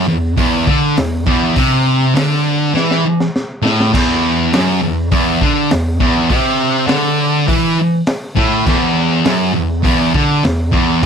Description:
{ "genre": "garage rock duo or trio", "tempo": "101 BPM", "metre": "4/4", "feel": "straight", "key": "unclear", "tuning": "A4 = 440 Hz", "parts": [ { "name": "thick fuzz guitar", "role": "riff", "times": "0.0-11.1 s", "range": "E2 to E3", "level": "-13 LUFS", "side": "equal", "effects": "distortion" }, { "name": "crunchy breakbeat drum kit", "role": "drums", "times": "0.4-11.1 s", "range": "crash cymbal, hi-hat, kick drum, snare drum, splash cymbal", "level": "-18 LUFS", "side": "equal", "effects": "none" } ], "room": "light reverb", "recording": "none", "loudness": "-12 LUFS", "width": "side -7 dB against mid", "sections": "0.0-11.1 A section", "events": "drum fill 2.8-3.9", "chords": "none" }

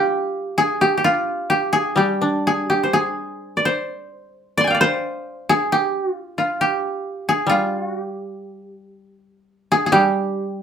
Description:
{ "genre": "japanese traditional, Japanese chamber music", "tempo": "62-69 BPM", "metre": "4/4", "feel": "rubato", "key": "G in sen", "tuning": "A4 = 440 Hz", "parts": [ { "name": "koto", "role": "melody", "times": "0.0-10.6 s", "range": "F4 to C6", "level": "-18 LUFS", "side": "equal", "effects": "none" }, { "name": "koto", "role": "accompaniment", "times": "0.0-10.6 s", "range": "G3 to D4", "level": "-22 LUFS", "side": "equal", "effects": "none" } ], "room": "wet studio reverb, RT60 0.6 s", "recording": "heard from further back in the room", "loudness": "-18 LUFS", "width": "side -8 dB against mid", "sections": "0.0-3.9 A section; 3.9-10.6 B section", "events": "none", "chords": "none" }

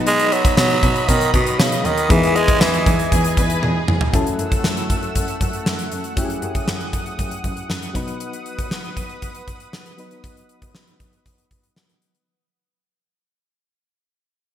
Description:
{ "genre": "1980s-style pop", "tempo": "118 BPM", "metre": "4/4", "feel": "straight", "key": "unclear", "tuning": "A4 = 440 Hz", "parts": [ { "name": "soft electric-piano-like synth keys", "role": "accompaniment", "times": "0.0-12.3 s", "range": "E3 to B4", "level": "-26 LUFS", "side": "left 4 dB", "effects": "chorus, tremolo" }, { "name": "lush unison pad", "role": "sustained chords", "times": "0.0-12.2 s", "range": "E3 to E6", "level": "-27 LUFS", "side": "equal", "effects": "chorus" }, { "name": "rich cello", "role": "bass", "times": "0.0-8.1 s", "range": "D#2 to B2", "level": "-25 LUFS", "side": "equal", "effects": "none" }, { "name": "raspy tenor saxophone", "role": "melody", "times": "0.1-3.1 s", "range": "B2 to G#3", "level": "-18 LUFS", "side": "right 2 dB", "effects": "none" }, { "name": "gated 80s drum kit", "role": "drums", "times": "0.1-12.3 s", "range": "hi-hat, kick drum, snare drum, tambourine, toms", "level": "-20 LUFS", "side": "equal", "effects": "gated reverb" }, { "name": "rich studio violin section", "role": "second line", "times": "3.1-4.1 s", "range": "G#4 to B4", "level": "-29 LUFS", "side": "equal", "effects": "digital delay" } ], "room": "moderate lush hall reverb, RT60 1.9 s", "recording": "bright 1980s-style digital production", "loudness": "-16 LUFS", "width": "side -10 dB against mid", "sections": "0.0-4.1 A section; 4.1-12.3 B section", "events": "drum fill 3.6-4.1; fade-out 4.1-12.3", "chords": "0.0 B; 2.1 Emaj7; 4.1 F#m7; 7.9 B" }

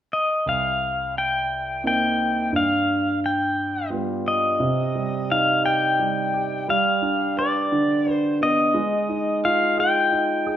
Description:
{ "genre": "folk", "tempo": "87 BPM", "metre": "3/4", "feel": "straight", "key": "C minor", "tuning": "A4 = 441 Hz", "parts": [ { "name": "pedal steel guitar", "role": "melody", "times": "0.1-10.6 s", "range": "D5 to G5", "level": "-22 LUFS", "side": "left 2 dB", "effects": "none" }, { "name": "warm grand piano", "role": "accompaniment", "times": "0.5-10.6 s", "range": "C2 to B4", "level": "-23 LUFS", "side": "right 2 dB", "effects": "none" } ], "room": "moderate large studio reverb, RT60 1.4 s", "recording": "minimal, uncompressed stereo recording", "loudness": "-19 LUFS", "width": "side -10 dB against mid", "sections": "0.5-4.6 A section; 4.6-10.6 B section", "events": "none", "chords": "0.5 Cm7; 2.5 G7; 4.6 Cm; 6.7 G7; 8.7 Fm9/Ab" }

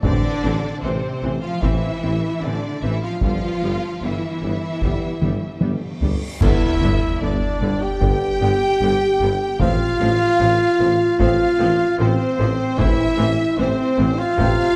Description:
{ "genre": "cinematic, epic orchestral film score", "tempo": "75 BPM", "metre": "4/4", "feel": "straight", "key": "unclear", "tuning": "A4 = 438 Hz", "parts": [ { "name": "warm symphonic violin section", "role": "melody", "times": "0.0-14.8 s", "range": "C5 to G5", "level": "-34 LUFS", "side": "equal", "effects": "none" }, { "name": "clear symphonic violin section", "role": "second line", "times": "0.0-14.8 s", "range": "C4 to G5", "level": "-32 LUFS", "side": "equal", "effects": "none" }, { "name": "rich symphonic viola section", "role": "accompaniment", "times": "0.0-14.5 s", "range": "C3 to C4", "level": "-33 LUFS", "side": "equal", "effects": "none" }, { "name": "dark trombone section", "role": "sustained chords", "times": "0.0-14.7 s", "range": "C3 to C4", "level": "-33 LUFS", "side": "equal", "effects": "none" }, { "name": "mellow French horn section", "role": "sustained chords", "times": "0.0-14.8 s", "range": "C4 to G4", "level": "-24 LUFS", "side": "equal", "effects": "none" }, { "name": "clear studio cello section", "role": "bass", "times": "0.0-14.5 s", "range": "G2 to F3", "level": "-30 LUFS", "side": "equal", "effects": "none" }, { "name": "clear symphonic double bass section", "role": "bass", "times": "0.0-14.5 s", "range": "G1 to A1", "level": "-28 LUFS", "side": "equal", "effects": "none" }, { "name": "mellow tuba", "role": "bass", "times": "0.0-14.5 s", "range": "G1 to A1", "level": "-29 LUFS", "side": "equal", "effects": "none" }, { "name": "taiko ensemble", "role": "drums", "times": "0.0-14.8 s", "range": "none", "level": "-25 LUFS", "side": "equal", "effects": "none" }, { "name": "cymbal swell, clash cymbals and concert bass drum", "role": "percussion", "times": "3.2-8.0 s", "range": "none", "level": "-29 LUFS", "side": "equal", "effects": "none" }, { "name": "reverse cymbal and impact", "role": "sound effects", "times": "6.1-9.6 s", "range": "none", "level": "-32 LUFS", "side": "equal", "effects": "none" }, { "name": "small flute group", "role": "second line", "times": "6.4-14.8 s", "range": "C5 to G5", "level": "-32 LUFS", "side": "equal", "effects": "none" }, { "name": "warm trumpet", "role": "stabs", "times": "6.4-14.8 s", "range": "C4 to G4", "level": "-29 LUFS", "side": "equal", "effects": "none" } ], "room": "wet concert hall reverb, RT60 2.0 s", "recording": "dark, warm production", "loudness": "-19 LUFS", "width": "mono", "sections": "0.0-6.4 A section; 6.4-14.8 A section", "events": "drum fill 5.2-6.4; reverse cymbal 6.1; band accent 6.4-7.2; impact 6.4-9.6", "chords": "0.0 Am; 3.2 Em/G; 6.4 G; 9.6 F/A; 12.8 Am" }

